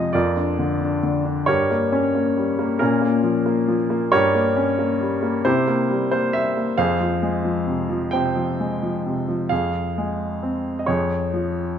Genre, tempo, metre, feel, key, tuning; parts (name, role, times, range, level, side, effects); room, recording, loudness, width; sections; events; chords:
classical, lyrical solo piano; 45 BPM (dotted quarters); 6/8; rubato; F minor; A4 = 439 Hz
clear baby grand piano; solo; 0.0-11.8 s; F2 to G5; -19 LUFS; equal
moderate scoring stage reverb, RT60 1.7 s; -19 LUFS; side -8 dB against mid
0.0-9.5 A section; 9.5-11.8 B section
0.1 Bb/F; 1.5 Gdim; 2.8 Bbm; 4.1 Gdim; 5.5 C7; 6.8 Fm; 10.9 Db/F